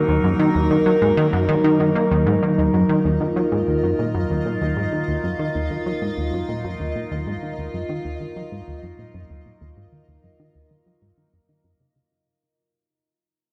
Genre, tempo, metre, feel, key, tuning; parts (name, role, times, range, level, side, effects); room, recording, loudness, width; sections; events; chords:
ambient, sequencer-driven space music; 96 BPM; 4/4; straight; Eb minor; A4 = 440 Hz
evolving wavetable pad; sustained chords; 0.0-12.1 s; Gb3 to Bb4; -24 LUFS; equal; phaser, built-in reverb
plucky analog bass; riff; 0.0-12.0 s; Eb2 to Bb3; -24 LUFS; equal; delay
pulsing gated texture; texture; 2.1-12.1 s; Eb5; -38 LUFS; equal; chorus, built-in reverb
wet lush hall reverb, RT60 2.9 s; dreamy mix soaked in reverb; -21 LUFS; mono
0.0-2.1 A section; 2.1-12.1 B section
fade-out 2.1-12.1; filter sweep on analog synth bass 2.1-12.1
0.0 Ebm; 2.1 Ebmadd9